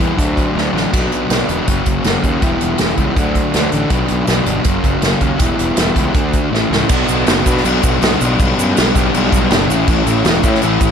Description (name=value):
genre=indie rock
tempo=161 BPM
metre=4/4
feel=straight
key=B minor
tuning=A4 = 442 Hz
part: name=fuzz guitar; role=riff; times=0.0-10.9 s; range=F#2 to F#4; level=-16 LUFS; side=left 1 dB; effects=distortion
part: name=fuzz fingered electric bass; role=bass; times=0.0-10.9 s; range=E1 to B2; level=-20 LUFS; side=equal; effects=overdrive
part: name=unplugged drum kit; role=drums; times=0.0-10.9 s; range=crash cymbal, hi-hat, kick drum, snare drum, splash cymbal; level=-17 LUFS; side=equal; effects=none
part: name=egg shaker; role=percussion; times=6.9-10.9 s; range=none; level=-29 LUFS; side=right 18 dB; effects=none
room=small room ambience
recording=none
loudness=-12 LUFS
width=side -7 dB against mid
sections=0.0-6.9 A section; 6.9-10.9 B section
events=drum fill 0.6-0.9, 6.5-6.9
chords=0.2 D; 0.9 Bm; 1.7 F#; 2.4 Em; 3.2 D; 3.9 Bm; 4.7 F#; 5.4 Em; 6.2 D; 6.5 A; 6.9 Bm; 8.4 G/B; 9.7 A